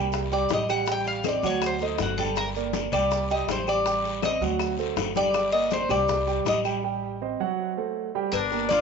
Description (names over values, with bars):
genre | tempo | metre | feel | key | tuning
latin, Cuban son and guajira | 161 BPM | 4/4 | straight | G minor | A4 = 441 Hz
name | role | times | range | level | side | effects
dark concert grand piano | arpeggios | 0.0-8.8 s | F#3 to D6 | -28 LUFS | right 9 dB | tape echo
upright bass | bass | 0.0-8.8 s | G1 to D2 | -33 LUFS | left 1 dB | none
bongos and cowbell | percussion | 0.1-8.8 s | none | -34 LUFS | left 14 dB | none
congas | percussion | 0.1-8.8 s | none | -36 LUFS | left 14 dB | none
guiro | percussion | 0.1-8.8 s | none | -37 LUFS | left 16 dB | none
maracas | percussion | 0.1-8.8 s | none | -44 LUFS | right 14 dB | none
Cuban tres | melody | 0.3-8.8 s | Eb4 to G5 | -26 LUFS | left 3 dB | none
claves | percussion | 0.7-8.5 s | none | -38 LUFS | left 18 dB | none
warm trumpet | second line | 8.3-8.8 s | D4 to F4 | -28 LUFS | left 12 dB | none
room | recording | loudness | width
wet echo chamber reverb, RT60 2.1 s | 1960s-style stereo with parts hard left and right, nothing above 7.7 kHz | -23 LUFS | side -5 dB against mid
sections
0.0-8.3 A section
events
Cuban tres solo 0.0-8.3; break 6.8-8.3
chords
0.1 C5; 0.9 Am7b5; 1.6 D7; 2.4 Gm; 3.1 C5; 3.9 Am7b5; 4.6 D7; 5.4 Gm; 6.1 Csus2; 6.8 Am7b5; 7.6 F#dim